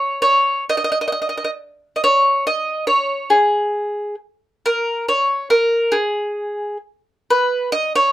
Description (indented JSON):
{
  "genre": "italian folk",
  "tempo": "137 BPM",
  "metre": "3/4",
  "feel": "rubato",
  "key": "unclear",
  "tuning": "A4 = 440 Hz",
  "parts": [
    { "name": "mandolin", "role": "solo", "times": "0.0-8.1 s", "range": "G#4 to D#5", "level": "-16 LUFS", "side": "equal", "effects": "none" }
  ],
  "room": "light reverb",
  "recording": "minimal, uncompressed stereo recording",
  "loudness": "-16 LUFS",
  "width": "side -14 dB against mid",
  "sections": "0.0-7.3 A section",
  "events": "none",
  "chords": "none"
}